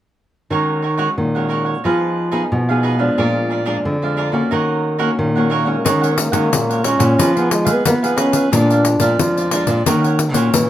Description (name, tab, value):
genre	samba and choro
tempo	90 BPM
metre	4/4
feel	straight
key	Eb minor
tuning	A4 = 437 Hz
part	cavaquinho	accompaniment	0.5-10.7 s	Eb4 to Gb5	-22 LUFS	right 5 dB	none
part	nylon-string guitar	accompaniment	0.5-10.7 s	F2 to Ab4	-21 LUFS	left 1 dB	none
part	nylon-string guitar	bass	0.5-10.7 s	Bb2 to Cb4	-18 LUFS	equal	none
part	warm trombone	melody	5.5-9.2 s	Ab3 to D4	-18 LUFS	equal	none
part	pandeiro	percussion	5.9-10.7 s	none	-20 LUFS	left 5 dB	none
room	light reverb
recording	none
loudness	-14 LUFS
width	side -12 dB against mid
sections	0.5-5.9 A section; 5.9-10.7 B section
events	none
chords	0.5 Ebm7; 1.8 Fm7b5; 3.2 Bb7; 4.5 Ebm7; 7.2 Fm7b5; 8.5 Bb7; 9.9 Ebm7